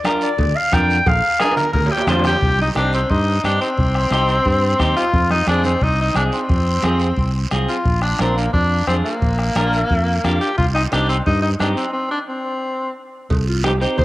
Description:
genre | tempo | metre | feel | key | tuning
latin, cumbia | 176 BPM | 4/4 | straight | C minor | A4 = 440 Hz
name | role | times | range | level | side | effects
clean electric guitar | accompaniment | 0.0-14.0 s | C4 to C5 | -24 LUFS | equal | cassette tape
congas | percussion | 0.0-14.0 s | none | -30 LUFS | right 3 dB | none
cowbell and timbales | percussion | 0.0-2.4, 13.3-14.0 s | none | -27 LUFS | right 4 dB | none
guiro | percussion | 0.0-14.0 s | none | -33 LUFS | right 5 dB | none
bombo | percussion | 0.1-14.0 s | none | -23 LUFS | equal | none
mellow clarinet | melody | 0.2-1.4, 13.5-14.0 s | F4 to G5 | -20 LUFS | equal | cassette tape
fingered electric bass | bass | 0.4-14.0 s | Bb1 to G2 | -19 LUFS | equal | none
bright tenor saxophone | second line | 1.4-12.9 s | Bb3 to Bb4 | -20 LUFS | left 1 dB | cassette tape, analog delay
room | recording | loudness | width
moderate spring reverb, RT60 2.7 s | home recording on cassette | -15 LUFS | side -17 dB against mid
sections
0.0-2.4 A section; 2.4-13.3 B section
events
drum fill 1.1-2.4; tenor saxophone solo 2.4-13.3; stop 11.9-13.3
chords
0.0 Bb; 2.4 Cm; 5.1 Fm; 7.9 Bb; 10.6 Cm

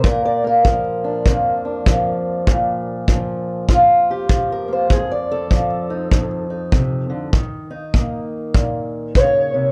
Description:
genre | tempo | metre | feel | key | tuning
acoustic country blues, solo or duo | 99 BPM | 4/4 | swing 62% on 8ths | Bb major | A4 = 440 Hz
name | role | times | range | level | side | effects
fingerpicked acoustic archtop guitar | melody | 0.0-9.7 s | F2 to D5 | -20 LUFS | equal | none
kick drum | drums | 0.0-9.3 s | none | -19 LUFS | equal | none
room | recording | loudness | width
moderate booth ambience, RT60 0.3 s | dark, warm production | -18 LUFS | mono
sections
0.0-9.7 A section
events
none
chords
0.0 Bb; 4.9 F7; 7.3 Eb5

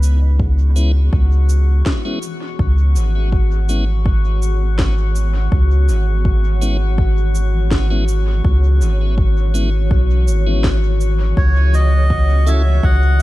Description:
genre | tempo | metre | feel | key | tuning
ambient dub | 82 BPM | 4/4 | straight | C# minor | A4 = 440 Hz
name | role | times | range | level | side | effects
granular cloud pad | sustained chords | 0.0-13.2 s | E3 to C#5 | -30 LUFS | equal | built-in reverb, vintage 12-bit sampler grit
soft dub sub bass | bass | 0.0-13.2 s | G#1 to C#2 | -14 LUFS | equal | none
electronic cabasa and snare drum | drums | 0.0-13.2 s | none | -27 LUFS | equal | studio reverb, dub echo
drifting glass-harmonics texture | texture | 0.0-13.2 s | F#4 | -27 LUFS | left 4 dB | chorus, built-in reverb
electronic kick drum | drums | 0.4-13.0 s | none | -18 LUFS | equal | studio reverb
tonewheel organ | stabs | 0.8-12.6 s | G#3 to A4 | -29 LUFS | left 1 dB | stopped rotary speaker, dub echo
melodica | melody | 11.4-13.2 s | C#5 to F#5 | -21 LUFS | right 2 dB | dub echo
room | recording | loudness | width
little or no reverb | none | -13 LUFS | side -17 dB against mid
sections
0.0-13.2 A section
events
fade-in on ambient pad 0.0-13.2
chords
0.0 C#m7; 11.4 F#m7

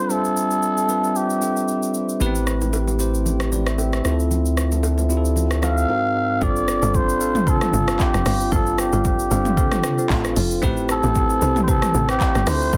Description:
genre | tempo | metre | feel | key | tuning
amapiano | 114 BPM | 4/4 | swing 55% on 16ths | unclear | A4 = 436 Hz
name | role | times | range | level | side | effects
trumpet with cup mute | melody | 0.0-1.9, 5.6-12.8 s | G4 to F5 | -25 LUFS | equal | tape echo
bell-like tine electric piano | accompaniment | 0.0-12.8 s | G#2 to G5 | -27 LUFS | equal | none
dark French horn section | sustained chords | 0.0-12.8 s | D3 to E5 | -32 LUFS | equal | sidechain pumping
deep house drum kit | drums | 0.1-12.8 s | handclaps, hi-hat, kick drum, rim click, shaker, toms | -26 LUFS | equal | none
punchy sub bass | bass | 2.2-5.9 s | A1 to D2 | -23 LUFS | equal | none
congas and bongos | percussion | 2.2-5.8 s | none | -34 LUFS | equal | none
marimba with medium mallets | stabs | 6.4-12.8 s | F4 to E5 | -32 LUFS | equal | tape echo
tight log drum bass | bass | 6.4-12.8 s | F1 to D2 | -25 LUFS | equal | none
room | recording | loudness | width
light reverb, small room reverb | dense, heavily limited modern master | -20 LUFS | mono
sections
0.0-6.4 A section; 6.4-12.8 B section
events
drop 6.4-12.8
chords
0.0 G9sus4; 2.2 Am9; 4.0 Dm9; 5.9 G#9; 6.4 G9sus4; 10.6 Am9

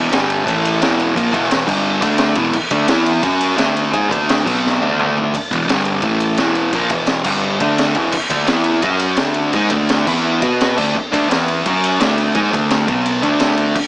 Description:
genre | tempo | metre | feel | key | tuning
garage rock duo or trio | 171 BPM | 4/4 | straight | unclear | A4 = 441 Hz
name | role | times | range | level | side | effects
fuzz guitar | riff | 0.0-13.8 s | E2 to B4 | -15 LUFS | equal | distortion
growling fingered electric bass | bass | 0.0-13.7 s | E1 to B2 | -27 LUFS | equal | overdrive, tube saturation
raw garage drum kit | drums | 0.1-13.8 s | crash cymbal, kick drum, ride cymbal, snare drum, toms | -19 LUFS | equal | none
room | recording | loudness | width
light reverb, small room ambience | small speaker sound | -13 LUFS | side -22 dB against mid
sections
0.0-5.3 A section; 5.3-13.9 B section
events
drum fill 4.6-5.3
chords
0.1 G5; 0.5 A5; 0.8 E5; 1.7 G5; 2.0 D5; 2.4 E5; 2.7 D5; 2.9 E5; 3.2 F#5; 3.6 D5; 4.5 B5; 4.8 D5; 5.3 E5; 5.7 G5; 6.0 A5; 6.4 E5; 7.3 G5; 7.6 D5; 8.0 E5; 8.3 D5; 8.5 E5; 8.9 F#5; 9.2 D5; 10.1 E5; 10.4 B5; 10.8 D5; 11.3 E5; 11.7 F#5; 12.0 D5; 12.9 B5; 13.2 D5

